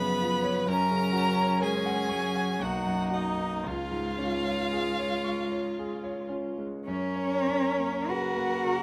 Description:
classical, slow romantic movement for piano quintet; 47-66 BPM; 3/4; rubato; F# major; A4 = 440 Hz
rich violin; melody; 0.0-8.8 s; C#5 to B5; -36 LUFS; equal
dark violin; second line; 0.0-8.8 s; D#4 to C#5; -36 LUFS; equal
warm cello; second line; 0.0-8.8 s; E#3 to F#4; -35 LUFS; equal
clear concert grand piano; accompaniment; 0.0-8.8 s; B1 to C#6; -35 LUFS; equal
warm viola; accompaniment; 0.0-8.8 s; B3 to B4; -37 LUFS; equal
moderate studio reverb, RT60 0.7 s; -29 LUFS; mono
0.0-6.9 A section; 6.9-8.8 B section
0.0 C#7/F#; 0.7 F#; 2.6 Bmaj7; 3.7 C#; 6.9 F#

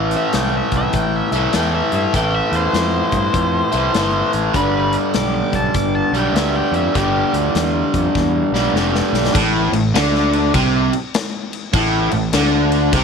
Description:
blues rock power trio and southern rock; 100 BPM; 4/4; swing 64% on 8ths; A minor; A4 = 436 Hz
biting overdriven guitar; riff; 0.0-13.0 s; G2 to A3; -17 LUFS; equal
fuzz fingered electric bass; bass; 0.0-13.0 s; F1 to G2; -21 LUFS; right 1 dB; overdrive
big rock drum kit; drums; 0.1-13.0 s; crash cymbal, hi-hat, kick drum, snare drum; -23 LUFS; left 4 dB
octave-fuzz lead guitar; melody; 0.2-7.3 s; G4 to D6; -23 LUFS; left 2 dB; distortion
light reverb; 1960s-style stereo; -15 LUFS; side -6 dB against mid
0.0-9.4 A section; 9.4-13.0 B section
drum fill 8.2-9.4
0.0 Am; 4.5 G; 9.4 Am

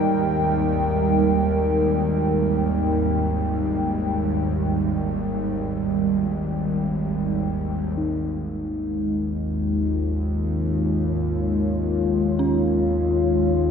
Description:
dark ambient drone; free time; A4 = 440 Hz
dark analog pad; sustained chords; 0.0-13.7 s; G3 to G5; -23 LUFS; equal; chorus, phaser
dark detuned synth bell; arpeggios; 0.0-13.7 s; C#4; -28 LUFS; right 7 dB; chorus
bowed-like drone; drone; 0.0-13.7 s; G#1 to D#2; -24 LUFS; equal; built-in reverb
quartz singing bowl; texture; 8.0-13.7 s; D#4; -30 LUFS; left 4 dB; stereo widening
wet plate reverb, RT60 2.7 s; dreamy mix soaked in reverb, nothing above 11.0 kHz; -20 LUFS; side -7 dB against mid
0.0-8.0 A section; 8.0-13.7 B section
filter sweep on synth drone 0.0-8.0
0.0 D#; 8.0 C#

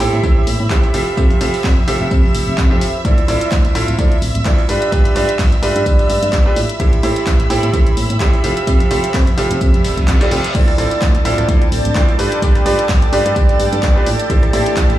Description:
piano house; 128 BPM; 4/4; swing 56% on 16ths; D dorian; A4 = 445 Hz
string machine, violins; sustained chords; 0.0-15.0 s; E5 to A6; -26 LUFS; equal; ensemble chorus, sidechain pumping
bright concert grand piano; riff; 0.0-15.0 s; D4 to G5; -18 LUFS; right 1 dB; sidechain pumping, tape echo
solid FM bass; bass; 0.0-14.9 s; D1 to A2; -20 LUFS; equal; sidechain pumping
dusty soul sampler-style drum kit; drums; 0.0-15.0 s; hi-hat, snare drum, tambourine; -33 LUFS; left 2 dB
punchy analog drum machine; drums; 0.0-15.0 s; crash cymbal, handclaps, hi-hat, rim click; -26 LUFS; left 1 dB
granular cloud pad; texture; 0.0-15.0 s; A4 to B5; -25 LUFS; equal; built-in reverb, sidechain pumping
electronic kick drum; drums; 0.2-14.9 s; -15 LUFS; equal
reverse cymbal; sound effects; 9.8-10.5 s; -27 LUFS; equal
light reverb; played on a big sound system in a bare room, large studio reverb, small room ambience; -12 LUFS; side -14 dB against mid
0.0-15.0 A section
reverse cymbal 9.8-10.5
0.0 Am7; 0.9 Fmaj9; 3.0 Dm9; 4.7 G7; 6.6 Am7; 8.4 Fmaj9; 10.5 Dm9; 12.2 G7; 14.1 Am7

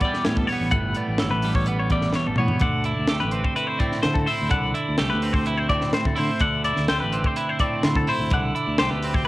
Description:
math rock and midwest emo; 127 BPM; 4/4; straight; A4 = 440 Hz
twelve-string electric guitar; accompaniment; 0.0-9.3 s; E2 to A4; -26 LUFS; right 3 dB; cassette tape
twelve-string electric guitar; arpeggios; 0.0-9.3 s; A4 to F#5; -26 LUFS; left 3 dB; wide subtle chorus, cassette tape
crisp fusion drum kit; drums; 0.0-9.3 s; hi-hat, kick drum, snare drum, toms; -25 LUFS; equal; cassette tape
growling fingered electric bass; bass; 0.3-9.3 s; G1 to D3; -26 LUFS; equal; overdrive
light reverb, small room ambience; home recording on cassette; -20 LUFS; side -18 dB against mid
0.0-9.3 A section
drum fill 2.2-2.6
0.0 A9; 2.6 D9

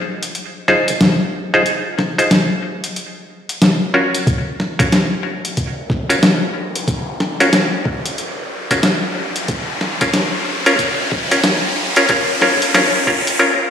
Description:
glitch hop; 92 BPM; 4/4; swing 62% on 16ths; A4 = 440 Hz
boom bap sampler-style drum kit; drums; 0.2-13.4 s; hi-hat, snare drum; -18 LUFS; left 1 dB; studio reverb
muted clav; stabs; 0.7-13.5 s; Db4 to C5; -16 LUFS; equal; sidechain pumping, ping-pong delay
electronic kick drum; drums; 4.3-13.2 s; -21 LUFS; equal; studio reverb
riser; sound effects; 5.2-13.4 s; -21 LUFS; equal
wet lush hall reverb, RT60 2.4 s; played on a big sound system in a bare room, stone room reverb, high-pass filter; -14 LUFS; side -8 dB against mid
0.0-13.7 A section
build-up 0.0-13.7; riser 5.2-13.4
0.0 Dbmaj7; 4.3 Dbadd11; 9.5 Db

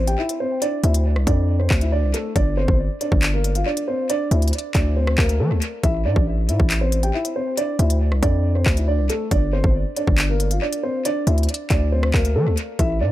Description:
hip hop, drill; 138 BPM; 4/4; half-time; A4 = 440 Hz
dark concert grand piano; melody; 0.0-13.1 s; A3 to G5; -24 LUFS; equal; low-pass filter, tape echo
distorted 808-style bass; bass; 0.0-13.1 s; G1 to F3; -19 LUFS; equal; distortion
drill drum kit; drums; 0.1-12.9 s; handclaps, hi-hat, kick drum, rim click; -22 LUFS; equal; tape echo
little or no reverb; echo-heavy mix; -18 LUFS; side -14 dB against mid
0.0-13.1 A section
0.0 Am7; 0.6 Dm7; 2.4 G5; 4.1 N.C.; 5.8 Am; 7.6 Dm7; 9.3 G5; 11.1 N.C.

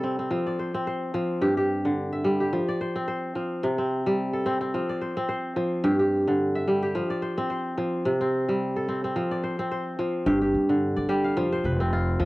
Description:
west african traditional, West African string and xylophone music; 108 BPM; 4/4; swing 55% on 16ths; A4 = 440 Hz
kora; arpeggios; 0.0-12.3 s; G2 to F5; -24 LUFS; equal; cassette tape
upright bass; bass; 10.3-12.3 s; F1 to G2; -28 LUFS; equal
light reverb; home recording on cassette; -24 LUFS; side -19 dB against mid
0.0-10.3 A section; 10.3-12.3 A section
0.3 F5; 1.4 G5; 2.5 F5; 3.6 C5; 4.7 F5; 5.8 G5; 6.9 F5; 8.1 C5; 9.2 F5; 10.3 G5; 11.4 F5

